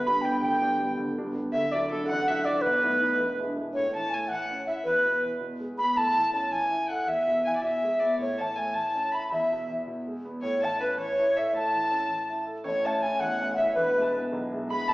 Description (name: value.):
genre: celtic folk, Celtic jig.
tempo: 108 BPM (dotted quarters).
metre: 6/8.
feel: straight.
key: G major, A major from 3.7 s.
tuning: A4 = 440 Hz.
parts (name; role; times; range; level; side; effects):
reedy baroque flute; melody; 0.0-14.9 s; A4 to B5; -26 LUFS; equal; none.
concert harp; second line; 0.0-4.7, 12.6-14.9 s; A4 to B5; -35 LUFS; right 1 dB; none.
rich fiddle; second line; 0.0-14.9 s; A4 to B5; -34 LUFS; left 1 dB; none.
warm grand piano; accompaniment; 0.0-14.9 s; D1 to A4; -32 LUFS; equal; none.
room: wet recital hall reverb, RT60 1.5 s.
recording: recorded in a church or concert hall, small speaker sound.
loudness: -24 LUFS.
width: side -19 dB against mid.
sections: 0.0-3.7 A section; 3.7-12.6 B section; 12.6-14.9 B section.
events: none.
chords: 0.0 G; 1.5 Dadd9; 2.6 B7; 3.2 E7; 3.7 A; 4.9 E; 6.0 A; 7.1 E; 8.2 A; 9.3 E; 10.4 A; 13.8 E.